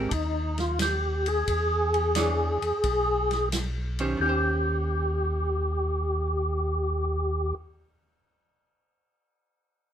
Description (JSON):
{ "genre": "soul jazz organ trio", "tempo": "88 BPM", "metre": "4/4", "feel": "swing 68% on 8ths", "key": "Eb mixolydian", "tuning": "A4 = 440 Hz", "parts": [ { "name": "archtop guitar, miked and amplified", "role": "accompaniment", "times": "0.0-7.7 s", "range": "Eb3 to C#5", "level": "-31 LUFS", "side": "right 3 dB", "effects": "none" }, { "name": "mellow tonewheel organ", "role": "bass", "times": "0.0-7.5 s", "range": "B1 to E2", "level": "-29 LUFS", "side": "equal", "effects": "slow rotary speaker" }, { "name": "percussive tonewheel organ", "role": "melody", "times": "0.1-7.5 s", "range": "D4 to Ab4", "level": "-26 LUFS", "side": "equal", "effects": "slow rotary speaker, overdrive, chorus vibrato" }, { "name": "vintage drum kit", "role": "drums", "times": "0.1-4.1 s", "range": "hi-hat, kick drum, ride cymbal, snare drum", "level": "-34 LUFS", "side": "equal", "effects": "none" } ], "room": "light reverb", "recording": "minimal, uncompressed stereo recording", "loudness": "-24 LUFS", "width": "side -9 dB against mid", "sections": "0.0-4.2 A section; 4.2-6.9 B section", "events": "none", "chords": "0.0 Abmaj7(no3); 1.5 E6; 4.2 Eb6" }